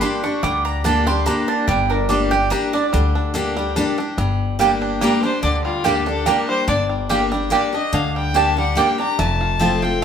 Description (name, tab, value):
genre	bluegrass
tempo	144 BPM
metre	3/4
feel	straight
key	G minor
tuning	A4 = 440 Hz
part	bluegrass banjo	melody	0.0-10.0 s	D3 to G4	-25 LUFS	equal	none
part	picked steel-string acoustic guitar	accompaniment	0.0-10.0 s	F2 to G4	-21 LUFS	left 2 dB	none
part	mandolin	stabs	0.0-10.0 s	Bb3 to D6	-21 LUFS	right 6 dB	none
part	upright bass	bass	0.4-10.0 s	F1 to D2	-23 LUFS	left 1 dB	none
part	rich fiddle	melody	5.0-10.0 s	F4 to Bb5	-22 LUFS	left 4 dB	none
room	wet large studio reverb, RT60 1.1 s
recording	band playing live in one room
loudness	-16 LUFS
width	side -8 dB against mid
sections	0.0-4.2 A section; 4.2-10.0 A section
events	mandolin solo 0.0-4.2; fiddle solo 4.2-10.0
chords	0.0 Gm; 9.2 F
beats	0.01 | 0.43 0.85 1.26 | 1.68 2.10 2.52 | 2.93 3.35 3.77 | 4.18 4.60 5.02 | 5.43 5.85 6.27 | 6.68 7.10 7.52 | 7.93 8.35 8.77 | 9.19 9.60 10.02